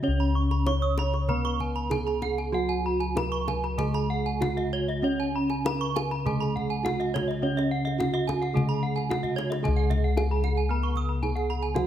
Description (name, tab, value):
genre	Balinese gamelan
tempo	96-113 BPM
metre	4/4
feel	straight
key	Db slendro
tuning	A4 = 440 Hz
part	gamelan-type bronze metallophone	melody	0.0-11.9 s	Db4 to Db5	-30 LUFS	right 3 dB	none
part	gamelan-type bronze metallophone	accompaniment	0.0-11.9 s	Db3 to Cb4-45c	-34 LUFS	right 4 dB	none
part	gamelan-type bronze metallophone	arpeggios	0.0-11.9 s	Db5 to Db6	-34 LUFS	left 1 dB	none
part	gamelan-type bossed gongs	bass	0.0-11.9 s	Db2 to Ab4+25c	-28 LUFS	left 2 dB	none
part	gamelan-type bronze metallophone	arpeggios	0.2-11.8 s	Db5 to Eb6+30c	-34 LUFS	right 6 dB	tape echo
part	kendang	percussion	0.5-11.9 s	none	-33 LUFS	left 2 dB	none
room	light reverb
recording	close, detailed microphones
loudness	-24 LUFS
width	side -10 dB against mid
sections	0.0-9.6 A section; 9.6-11.9 B section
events	drum fill 9.2-9.6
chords	none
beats	| 0.04 0.67 1.29 1.92 | 2.54 3.17 3.79 4.42 | 5.04 5.66 6.26 6.86 | 7.43 8.00 8.56 9.10 | 9.64 10.17 10.70 11.23 | 11.76